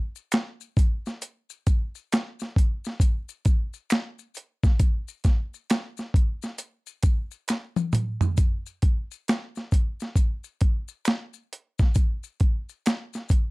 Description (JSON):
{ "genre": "R&B", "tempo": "67 BPM", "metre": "4/4", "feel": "swing 63% on 16ths", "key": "none", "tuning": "none", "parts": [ { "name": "maracas and finger snaps", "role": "percussion", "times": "0.2-13.5 s", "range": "none", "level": "-37 LUFS", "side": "right 2 dB", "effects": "none" }, { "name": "dusty soul sampler-style drum kit", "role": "drums", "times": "0.3-13.5 s", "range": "hi-hat, kick drum, snare drum, toms", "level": "-22 LUFS", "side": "equal", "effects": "overdrive" } ], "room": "little or no reverb", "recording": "dry, close 1970s-style studio recording", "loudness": "-23 LUFS", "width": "side -24 dB against mid", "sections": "0.0-8.4 A section; 8.4-13.5 B section", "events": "drum fill 7.5-8.4", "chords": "none" }